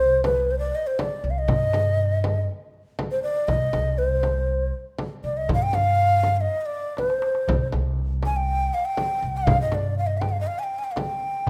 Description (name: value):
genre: Arabic maqam ensemble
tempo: 120 BPM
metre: 4/4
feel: straight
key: C maqam nahawand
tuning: A4 = 441 Hz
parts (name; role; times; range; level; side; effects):
- breathy low ney; melody; 0.0-11.5 s; B4 to Ab5; -26 LUFS; equal; none
- upright bass; bass; 0.0-11.5 s; C2 to G2; -27 LUFS; equal; none
- darbuka; percussion; 0.2-11.5 s; none; -33 LUFS; equal; none
- frame drum; percussion; 0.2-11.5 s; none; -31 LUFS; equal; none
room: light reverb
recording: none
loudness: -24 LUFS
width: mono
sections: 0.0-11.5 A section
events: drum fill 7.0-7.5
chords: none